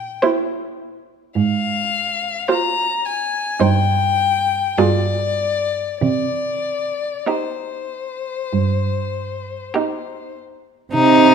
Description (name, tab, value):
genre	classical, slow romantic movement for string quartet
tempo	48-54 BPM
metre	4/4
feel	rubato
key	C minor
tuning	A4 = 440 Hz
part	rich violin	melody	0.0-11.3 s	C5 to Bb5	-21 LUFS	left 6 dB	none
part	rich violin	second line	0.2-11.3 s	Eb4 to C5	-18 LUFS	left 1 dB	none
part	rich viola	accompaniment	0.2-10.7 s	Eb4 to F4	-22 LUFS	right 5 dB	none
part	rich cello	bass	1.4-11.3 s	G2 to C3	-19 LUFS	right 5 dB	none
room	moderate recital hall reverb, RT60 1.7 s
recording	none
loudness	-17 LUFS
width	side -6 dB against mid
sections	0.0-10.9 A section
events	none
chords	0.0 C; 1.4 Fm/Ab; 3.6 Cm/G; 4.8 G5; 6.0 Cm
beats	0.23 | 1.36 2.50 3.61 4.78 | 6.02 7.27 8.53 9.76 | 10.94